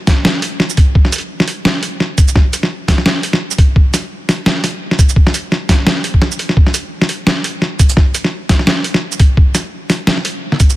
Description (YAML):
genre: drum and bass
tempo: 171 BPM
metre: 4/4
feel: swing 56% on 16ths, half-time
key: none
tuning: none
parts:
  - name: boom bap sampler-style drum kit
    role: drums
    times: 0.1-10.8 s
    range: hi-hat, shaker, snare drum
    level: -14 LUFS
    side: equal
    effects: studio reverb
  - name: electronic kick drum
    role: drums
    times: 0.1-10.7 s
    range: none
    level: -9 LUFS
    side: equal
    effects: studio reverb
room: little or no reverb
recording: dense, heavily limited modern master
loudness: -11 LUFS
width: side -17 dB against mid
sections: 0.0-10.8 A section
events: break 6.2-6.6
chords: none